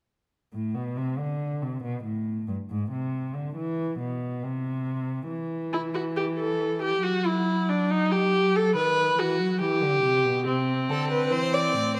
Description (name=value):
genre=classical, baroque-style fugue for string quartet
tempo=69 BPM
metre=3/4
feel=straight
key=A minor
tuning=A4 = 438 Hz
part: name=dark cello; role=bass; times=0.5-12.0 s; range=G2 to F#3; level=-30 LUFS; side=equal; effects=none
part: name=warm viola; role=accompaniment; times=5.7-12.0 s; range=C4 to B4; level=-27 LUFS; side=equal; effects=none
part: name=warm violin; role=second line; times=10.9-12.0 s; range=A4 to D5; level=-27 LUFS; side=equal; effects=none
room=moderate recital hall reverb, RT60 1.8 s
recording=none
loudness=-27 LUFS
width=mono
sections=0.1-12.0 A section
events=none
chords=0.1 Am; 1.8 N.C.; 2.7 E/G#; 4.4 N.C.; 5.3 Em; 7.0 D/F#; 7.9 B/F#; 9.6 Em; 10.5 Am/C